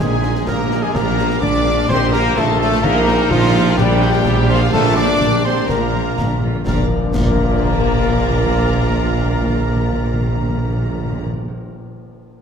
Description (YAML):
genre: cinematic, heroic adventure film score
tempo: 126 BPM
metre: 4/4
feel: straight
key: Bb major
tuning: A4 = 441 Hz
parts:
  - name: clear symphonic violin section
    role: melody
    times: 0.0-11.2 s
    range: F5 to D6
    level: -29 LUFS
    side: left 4 dB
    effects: none
  - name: dark clarinet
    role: second line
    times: 0.0-11.2 s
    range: D4 to G4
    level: -29 LUFS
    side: equal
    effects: none
  - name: mellow cor anglais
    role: second line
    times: 0.0-11.2 s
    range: F4 to D5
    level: -28 LUFS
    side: right 3 dB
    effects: none
  - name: rich symphonic violin section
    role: second line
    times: 0.0-11.2 s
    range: F5 to D6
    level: -30 LUFS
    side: left 1 dB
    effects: none
  - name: rich studio viola section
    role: accompaniment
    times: 0.0-11.2 s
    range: C4 to G5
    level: -29 LUFS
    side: right 1 dB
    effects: none
  - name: mellow French horn section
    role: sustained chords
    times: 0.0-11.0 s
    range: F3 to D4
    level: -21 LUFS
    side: left 4 dB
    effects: none
  - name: concert harp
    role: arpeggios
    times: 0.0-11.8 s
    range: Bb2 to D5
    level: -27 LUFS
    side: left 8 dB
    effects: none
  - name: warm trumpet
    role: stabs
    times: 0.0-11.2 s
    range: F4 to D5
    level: -26 LUFS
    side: right 1 dB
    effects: none
  - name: dark symphonic cello section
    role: bass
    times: 0.0-11.2 s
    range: Bb2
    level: -24 LUFS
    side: equal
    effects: none
  - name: rich symphonic double bass section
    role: bass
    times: 0.0-11.2 s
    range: Bb1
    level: -23 LUFS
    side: right 2 dB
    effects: none
  - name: warm tuba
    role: bass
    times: 0.0-11.2 s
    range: Bb1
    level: -23 LUFS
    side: right 6 dB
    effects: none
  - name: timpani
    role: percussion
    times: 0.0-11.6 s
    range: Bb2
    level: -24 LUFS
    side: equal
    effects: none
  - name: concert snare drum, concert bass drum and clash cymbals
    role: drums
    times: 0.2-7.3 s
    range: none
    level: -24 LUFS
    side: equal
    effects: none
  - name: tam-tam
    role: percussion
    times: 6.7-8.5 s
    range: none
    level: -30 LUFS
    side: left 2 dB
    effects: none
room: moderate scoring stage reverb, RT60 2.0 s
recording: none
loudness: -14 LUFS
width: side -7 dB against mid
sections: 0.0-6.7 A section; 6.7-10.5 B section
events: timpani fill 5.7-6.7; band accent 6.7-7.1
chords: 0.0 Ab/Bb; 1.0 Bb; 1.9 Cm/Bb; 2.8 Eb/Bb; 3.8 Bb; 4.7 F5/Bb; 5.7 Bb